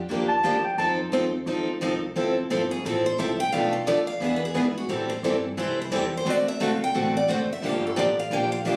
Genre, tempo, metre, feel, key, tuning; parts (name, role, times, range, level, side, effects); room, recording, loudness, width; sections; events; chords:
acoustic string swing (jazz manouche); 175 BPM; 4/4; swing 60% on 8ths; F major; A4 = 440 Hz
upright bass; bass; 0.0-8.8 s; F1 to A2; -36 LUFS; equal
picked steel-string acoustic guitar; accompaniment; 0.1-8.8 s; B2 to A4; -30 LUFS; equal
picked steel-string acoustic guitar; accompaniment; 0.1-8.8 s; B2 to B4; -32 LUFS; equal
mellow clarinet; second line; 0.3-0.9 s; G5 to A5; -25 LUFS; equal; slapback echo
picked steel-string acoustic guitar; melody; 2.7-8.8 s; E4 to G5; -29 LUFS; equal
wet studio reverb, RT60 0.6 s; recorded on a phone in the room, studio reverb, compression; -25 LUFS; mono
0.0-2.2 A section; 2.2-8.8 A section
clarinet solo 0.0-2.2; steel-string acoustic guitar solo 2.2-8.8
0.0 Gm7; 0.8 F6; 2.2 Fmaj7; 3.5 Bm7b5; 4.2 E7; 4.9 Am7; 6.3 D7; 7.6 Gm7